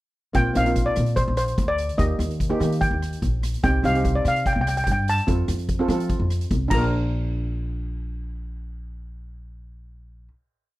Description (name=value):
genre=calypso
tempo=146 BPM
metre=4/4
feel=straight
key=Bb major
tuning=A4 = 441 Hz
part: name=steel pan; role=accompaniment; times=0.3-10.3 s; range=Bb3 to Bb4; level=-26 LUFS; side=right 2 dB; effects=none
part: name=upright bass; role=bass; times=0.3-10.3 s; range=Bb1 to F3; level=-25 LUFS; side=equal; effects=none
part: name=street-band drum kit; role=drums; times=0.3-6.8 s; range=crash cymbal, hi-hat, kick drum, rim click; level=-28 LUFS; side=equal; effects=none
part: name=steel pan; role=melody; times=0.4-10.3 s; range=C5 to Bb5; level=-24 LUFS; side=left 1 dB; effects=none
room=studio ambience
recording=dry, close 1970s-style studio recording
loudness=-20 LUFS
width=side -18 dB against mid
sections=0.3-6.9 verse; 6.9-10.2 final hit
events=none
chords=0.3 Bbsus2; 2.0 Eb; 3.6 Cm; 5.3 F; 6.7 Bb